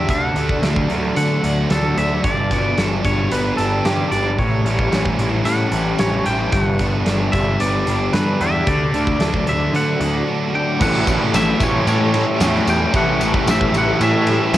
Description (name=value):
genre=rock, shoegaze and dream pop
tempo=112 BPM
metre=4/4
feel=straight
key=unclear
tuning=A4 = 440 Hz
part: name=twangy electric guitar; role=melody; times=0.0-14.6 s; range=G4 to G5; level=-23 LUFS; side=equal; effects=cassette tape, analog delay
part: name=deep dark ambient pad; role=sustained chords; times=0.0-14.6 s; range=F#4 to D6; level=-28 LUFS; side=left 2 dB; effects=chorus, built-in reverb
part: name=biting overdriven guitar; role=riff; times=0.0-14.6 s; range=G2 to G4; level=-23 LUFS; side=right 6 dB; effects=reverse reverb
part: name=thick fuzz guitar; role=riff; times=0.0-14.6 s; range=G2 to E4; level=-23 LUFS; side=left 4 dB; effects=distortion, ensemble chorus
part: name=fuzz picked electric bass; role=bass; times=0.0-14.6 s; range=G1 to D3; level=-22 LUFS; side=equal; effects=overdrive
part: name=huge arena drum kit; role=drums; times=0.1-14.6 s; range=crash cymbal, hi-hat, kick drum, ride cymbal, snare drum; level=-23 LUFS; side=equal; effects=cassette tape
part: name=distorted electric guitar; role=riff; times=10.8-14.6 s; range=A2 to A3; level=-23 LUFS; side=equal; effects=distortion
part: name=tambourine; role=percussion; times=10.8-14.6 s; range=none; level=-32 LUFS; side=left 5 dB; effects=none
room=light reverb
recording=home recording on cassette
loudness=-15 LUFS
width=side -13 dB against mid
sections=0.0-10.8 A section; 10.8-14.6 A section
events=none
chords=0.1 D; 2.2 G; 4.4 A7; 6.5 G; 8.7 D; 10.8 A7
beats=| 0.10 0.63 1.17 1.71 | 2.24 2.78 3.32 3.85 | 4.39 4.92 5.46 6.00 | 6.53 7.07 7.60 8.14 | 8.67 9.21 9.74 10.28 | 10.81 11.35 11.88 12.41 | 12.94 13.48 14.01 14.54